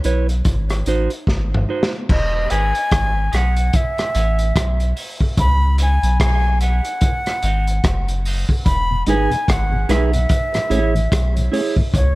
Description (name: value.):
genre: dub reggae.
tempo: 73 BPM.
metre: 4/4.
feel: swing 58% on 16ths.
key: unclear.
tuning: A4 = 435 Hz.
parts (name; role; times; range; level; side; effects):
mellow electric guitar; accompaniment; 0.0-11.8 s; D#4 to C#5; -25 LUFS; right 5 dB; high-pass filter, dub echo.
soft dub sub bass; bass; 0.0-12.2 s; E1 to C#2; -18 LUFS; equal; none.
crunchy breakbeat drum kit; drums; 0.0-12.2 s; crash cymbal, hi-hat, kick drum, rim click, snare drum, toms; -20 LUFS; equal; none.
reedy concert flute; melody; 2.1-12.2 s; C#5 to B5; -22 LUFS; equal; dub echo.
mellow tonewheel organ; accompaniment; 2.3-11.8 s; E2 to G#4; -24 LUFS; left 1 dB; chorus vibrato, slow rotary speaker, high-pass filter.
room: small room ambience.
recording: none.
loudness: -16 LUFS.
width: side -20 dB against mid.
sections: 0.0-2.1 A section; 2.1-12.2 B section.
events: filter sweep 0.0-8.7; drum fill 1.3-2.1.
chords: 0.5 G#7; 2.1 Emaj7; 3.7 Amaj7; 5.4 C#m7; 7.0 G#7; 8.7 Emaj7; 10.3 Amaj7.